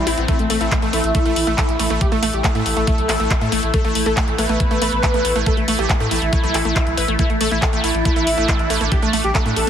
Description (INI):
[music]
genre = psychedelic trance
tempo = 139 BPM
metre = 4/4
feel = straight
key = unclear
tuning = A4 = 440 Hz
[part]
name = wide unison lead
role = melody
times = 0.0-9.7 s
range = A3 to B4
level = -22 LUFS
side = equal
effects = phaser, sidechain pumping, tape echo
[part]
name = overtone-sweeping drone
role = sustained chords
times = 0.0-9.7 s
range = A3 to E4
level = -26 LUFS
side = equal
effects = chorus, built-in reverb, phaser, sidechain pumping
[part]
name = round analog bass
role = bass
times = 0.0-9.7 s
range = A1 to A2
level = -24 LUFS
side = equal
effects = none
[part]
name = wide unison pluck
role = riff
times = 0.1-9.7 s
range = A3 to B4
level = -23 LUFS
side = moving between left 4 dB and right 7 dB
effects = auto-pan, sidechain pumping, tape echo
[part]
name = drum and bass drum kit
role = drums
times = 0.1-9.7 s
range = handclaps, hi-hat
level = -24 LUFS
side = left 1 dB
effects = none
[part]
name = electronic kick drum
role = drums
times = 0.3-9.4 s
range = none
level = -18 LUFS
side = equal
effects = none
[sound]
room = light reverb, digital ambience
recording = heavily compressed radio sound, multiband compression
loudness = -16 LUFS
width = side -9 dB against mid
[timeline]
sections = 0.0-9.7 A section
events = none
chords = 0.0 A5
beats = | 0.28 0.72 1.15 1.58 | 2.01 2.44 2.87 3.31 | 3.74 4.17 4.60 5.03 | 5.46 5.90 6.33 6.76 | 7.19 7.62 8.05 8.49 | 8.92 9.35